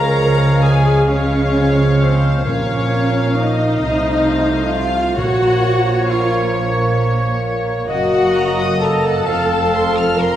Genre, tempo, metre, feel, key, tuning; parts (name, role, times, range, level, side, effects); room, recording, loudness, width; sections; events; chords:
classical, slow romantic movement for symphony orchestra; 44 BPM (dotted quarters); 6/8; rubato; A4 = 440 Hz
warm studio violin section; melody; 0.0-10.4 s; Db5 to F6; -26 LUFS; left 4 dB
dark clarinet; second line; 0.0-10.4 s; C4 to Bb4; -26 LUFS; left 1 dB
mellow hollow flute section; second line; 0.0-10.4 s; C5 to Bb5; -26 LUFS; left 3 dB
rich studio violin section; second line; 0.0-10.4 s; C5 to Bb5; -28 LUFS; left 1 dB
warm oboe; second line; 0.0-10.4 s; Db5 to F5; -29 LUFS; equal
dark bassoon; accompaniment; 0.0-10.3 s; Ab3 to C4; -25 LUFS; equal
dark symphonic viola section; accompaniment; 0.0-10.4 s; C4 to Bb4; -20 LUFS; equal
mellow French horn section; sustained chords; 0.0-10.4 s; C4 to Bb4; -24 LUFS; left 2 dB
warm trombone section; sustained chords; 0.0-10.4 s; F3 to C4; -27 LUFS; right 2 dB
warm trumpet; stabs; 0.0-10.4 s; C5 to F5; -25 LUFS; right 1 dB
dark studio cello section; bass; 0.0-10.4 s; F2 to Db3; -21 LUFS; right 1 dB
dark symphonic double bass section; bass; 0.0-10.4 s; F1 to Db2; -21 LUFS; right 2 dB
timpani; percussion; 2.5-6.5 s; Bb2; -28 LUFS; left 1 dB
wet recital hall reverb, RT60 1.3 s; heard from further back in the room; -13 LUFS; side -11 dB against mid
0.0-10.4 A section
0.0 Db; 2.5 Bbm; 3.8 F7/C; 5.2 Bbm; 7.9 Ebm/Gb; 9.3 F